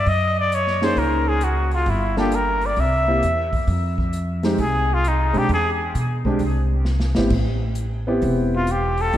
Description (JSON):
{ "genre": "jazz, small-group swing and bop", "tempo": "132 BPM", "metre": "4/4", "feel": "swing 67% on 8ths", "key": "unclear", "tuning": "A4 = 441 Hz", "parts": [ { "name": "trumpet with straight mute", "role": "melody", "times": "0.0-5.7, 8.6-9.2 s", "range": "Eb4 to E5", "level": "-22 LUFS", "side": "left 1 dB", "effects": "diffuse ambient delay" }, { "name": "upright bass", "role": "bass", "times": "0.0-9.2 s", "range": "E1 to B2", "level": "-22 LUFS", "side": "equal", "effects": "none" }, { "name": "vintage drum kit", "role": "drums", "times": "0.1-9.2 s", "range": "crash cymbal, hi-hat, kick drum, snare drum", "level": "-28 LUFS", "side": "equal", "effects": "none" }, { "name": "warm grand piano", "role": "accompaniment", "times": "0.8-9.2 s", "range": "A2 to A4", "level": "-24 LUFS", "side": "equal", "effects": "none" } ], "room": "moderate lush hall reverb, RT60 1.9 s", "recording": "dreamy mix soaked in reverb", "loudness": "-18 LUFS", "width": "side -12 dB against mid", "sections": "0.0-7.3 A section; 7.3-9.2 B section", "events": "drum fill 6.9-7.3", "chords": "0.1 Gb6; 1.9 Gm7; 2.8 C7; 3.7 Fmadd9; 5.5 Eaug; 7.3 Am9", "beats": "| 0.06 0.51 0.97 1.42 | 1.87 2.33 2.78 3.23 | 3.69 4.14 4.59 5.05 | 5.50 5.96 6.41 6.87 | 7.32 7.78 8.23 8.69 | 9.14" }